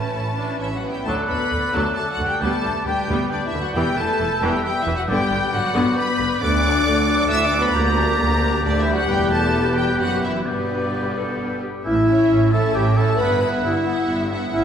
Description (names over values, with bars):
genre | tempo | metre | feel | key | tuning
cinematic | 134 BPM | 3/4 | straight | unclear | A4 = 439 Hz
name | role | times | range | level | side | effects
rich symphonic violin section | melody | 0.0-14.6 s | B4 to E6 | -26 LUFS | left 1 dB | none
warm symphonic violin section | second line | 0.0-14.5 s | B3 to F#5 | -28 LUFS | left 2 dB | none
rich studio viola section | accompaniment | 0.0-14.5 s | D3 to G4 | -26 LUFS | equal | none
rich symphonic cello section | bass | 0.0-14.6 s | D2 to C#4 | -28 LUFS | right 2 dB | none
rich symphonic double bass section | bass | 0.0-14.6 s | E1 to D2 | -26 LUFS | right 2 dB | none
mellow French horn section | sustained chords | 0.6-14.6 s | B2 to B4 | -24 LUFS | left 2 dB | none
bright clarinet | second line | 1.1-14.6 s | B3 to B4 | -31 LUFS | left 2 dB | none
concert flute | second line | 1.1-14.6 s | E5 to G6 | -29 LUFS | left 2 dB | none
warm oboe | second line | 1.1-14.6 s | E4 to E5 | -27 LUFS | right 2 dB | none
room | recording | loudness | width
wet recital hall reverb, RT60 1.3 s | recorded in a church or concert hall | -18 LUFS | side -8 dB against mid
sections
0.0-1.1 A section; 1.1-11.8 B section; 11.8-14.6 A section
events
none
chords
0.0 Aadd9; 1.1 D; 2.4 G/D; 3.8 Em; 5.1 G; 6.4 D; 7.8 Gm/D; 9.1 Em; 10.5 G; 11.8 A; 13.2 Emadd9/G